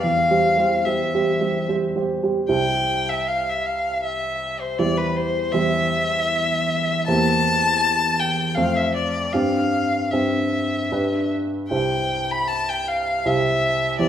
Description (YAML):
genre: classical, romantic duo for violin and grand piano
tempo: 71-84 BPM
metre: 3/4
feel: rubato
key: C major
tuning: A4 = 439 Hz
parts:
  - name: rich violin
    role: melody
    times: 0.0-14.1 s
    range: B4 to B5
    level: -21 LUFS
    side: left 2 dB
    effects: none
  - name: warm grand piano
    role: accompaniment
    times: 0.0-14.1 s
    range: C2 to C5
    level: -22 LUFS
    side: right 2 dB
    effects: none
room: wet recital hall reverb, RT60 1.4 s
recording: none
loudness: -19 LUFS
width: side -10 dB against mid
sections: 0.0-2.5 A section; 2.5-14.1 A section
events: none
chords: 0.0 C/E; 2.5 C; 4.8 C/E; 7.1 C7/E; 8.6 F; 9.3 C/G; 10.9 G; 11.7 C